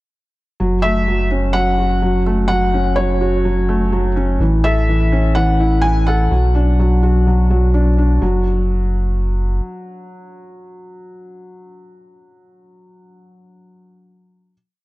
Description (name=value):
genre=piano and strings electronica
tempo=126 BPM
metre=4/4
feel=straight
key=F# minor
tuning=A4 = 436 Hz
part: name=felt-muted upright piano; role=riff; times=0.6-14.5 s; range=E3 to A4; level=-19 LUFS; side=equal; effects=ping-pong delay
part: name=warm sub bass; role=bass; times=0.6-9.6 s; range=F#1 to B1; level=-16 LUFS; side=equal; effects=none
part: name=felt-muted upright piano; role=melody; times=0.8-7.7 s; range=C#5 to G#5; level=-21 LUFS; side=left 1 dB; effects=ping-pong delay
room=light reverb, small room ambience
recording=dark, warm production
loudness=-14 LUFS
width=side -19 dB against mid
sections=0.6-8.2 drop; 8.2-12.0 final note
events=drop 0.6-8.2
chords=0.6 F#m; 4.4 A; 6.3 Bm; 8.2 N.C.